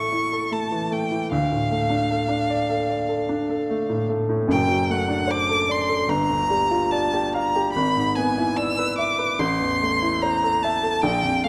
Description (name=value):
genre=classical, romantic duo for violin and grand piano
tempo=74 BPM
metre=4/4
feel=uneven beats, rubato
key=unclear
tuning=A4 = 441 Hz
part: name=rich violin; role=melody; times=0.0-11.5 s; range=F5 to E6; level=-26 LUFS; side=equal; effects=none
part: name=warm baby grand piano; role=accompaniment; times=0.0-11.5 s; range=F#1 to F5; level=-25 LUFS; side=equal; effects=none
room=moderate scoring stage reverb, RT60 1.8 s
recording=dark, warm production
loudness=-22 LUFS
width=mono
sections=0.0-11.5 A section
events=none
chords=0.0 A; 1.3 Dm; 4.5 D7/F#; 6.1 Gm7; 7.7 E7/G#; 9.4 Am